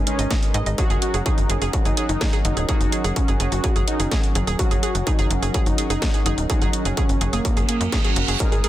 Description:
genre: melodic techno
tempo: 126 BPM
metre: 4/4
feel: straight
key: unclear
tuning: A4 = 438 Hz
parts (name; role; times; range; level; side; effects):
- warm analog pad; sustained chords; 0.0-8.7 s; F#3 to B4; -33 LUFS; right 2 dB; chorus, vintage 12-bit sampler grit, sidechain pumping
- analog synth brass; stabs; 0.0-8.7 s; F#3 to G#4; -30 LUFS; left 1 dB; chorus, sidechain pumping, digital delay
- tight sequencer bass; bass; 0.0-8.6 s; D#1 to G#2; -24 LUFS; equal; sidechain pumping
- wide unison lead; melody; 0.1-8.7 s; A#3 to A#4; -28 LUFS; equal; cassette tape, sidechain pumping, digital delay
- techno drum kit; drums; 0.1-8.7 s; hi-hat, snare drum; -28 LUFS; right 1 dB; none
- analog pluck; arpeggios; 0.2-8.7 s; G#4 to D#5; -30 LUFS; right 4 dB; chorus, sidechain pumping, digital delay
- electronic kick drum; drums; 0.3-8.5 s; none; -22 LUFS; equal; distortion
- reverse cymbal; sound effects; 7.6-8.4 s; none; -27 LUFS; right 8 dB; none
room: digital ambience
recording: dense, heavily limited modern master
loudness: -18 LUFS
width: side -13 dB against mid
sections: 0.0-8.7 A section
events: reverse cymbal 7.6-8.4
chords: 0.0 G#madd9; 0.8 F#6

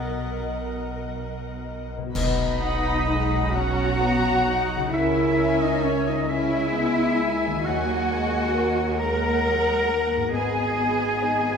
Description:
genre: cinematic, emotional film score for orchestra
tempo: 44 BPM (dotted quarters)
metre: 6/8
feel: uneven beats, rubato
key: B major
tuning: A4 = 442 Hz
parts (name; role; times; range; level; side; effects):
- muted studio violin section; melody; 0.0-11.6 s; F#5 to B5; -35 LUFS; left 1 dB; none
- clear clarinet; second line; 0.0-1.6 s; B3; -36 LUFS; left 4 dB; none
- muted studio violin section; second line; 0.0-11.6 s; D#5 to F#5; -32 LUFS; left 6 dB; none
- muted studio viola section; accompaniment; 0.0-11.6 s; G#3 to A#4; -30 LUFS; left 1 dB; none
- concert harp; arpeggios; 0.0-11.6 s; G#2 to F#5; -34 LUFS; left 9 dB; none
- muted studio cello section; bass; 0.0-11.6 s; B2 to A#4; -26 LUFS; right 2 dB; none
- muted studio double bass section; bass; 0.0-11.6 s; G#1 to D#2; -30 LUFS; right 3 dB; none
- dark French horn section; sustained chords; 2.2-11.6 s; F#3 to A#4; -30 LUFS; equal; none
- clash cymbals and concert bass drum; percussion; 2.2-4.0 s; none; -31 LUFS; left 1 dB; none
- clear oboe; second line; 2.6-11.6 s; C#5 to A#5; -31 LUFS; right 1 dB; none
- mellow flute section; second line; 2.6-11.6 s; C#5 to A#5; -29 LUFS; left 3 dB; none
room: wet scoring stage reverb, RT60 2.0 s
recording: minimal, uncompressed stereo recording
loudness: -21 LUFS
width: side -6 dB against mid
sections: 0.0-2.1 A section; 2.1-11.6 B section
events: band accent 2.1-3.1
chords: 0.0 Bmaj7; 2.1 B; 4.9 C#madd9; 7.6 D#m; 10.3 G#m7

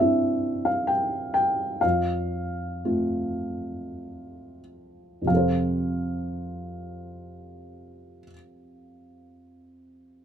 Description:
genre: classical, lyrical solo piano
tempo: 44-69 BPM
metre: 3/4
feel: rubato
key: F major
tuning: A4 = 441 Hz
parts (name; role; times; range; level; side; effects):
- felt-muted upright piano; solo; 0.0-10.2 s; F2 to G5; -24 LUFS; equal; none
room: little or no reverb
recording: close, detailed microphones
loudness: -24 LUFS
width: side -9 dB against mid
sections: 0.0-5.3 A section; 5.3-9.3 B section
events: slowing down 0.0-5.3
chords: 0.0 Cadd9; 1.8 F

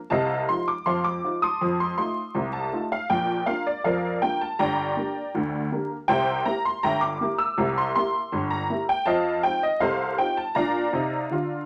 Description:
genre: ragtime piano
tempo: 80 BPM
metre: 2/4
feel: straight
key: unclear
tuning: A4 = 442 Hz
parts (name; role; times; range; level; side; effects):
- honky-tonk upright piano; solo; 0.1-11.6 s; G1 to E6; -25 LUFS; equal; none
room: moderate studio reverb, RT60 0.6 s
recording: vinyl crackle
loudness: -25 LUFS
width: mono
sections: 0.0-11.7 A section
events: none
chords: 0.1 F7/C; 3.1 Bb; 4.6 Gm; 6.1 C7; 9.1 F7; 10.6 Bb

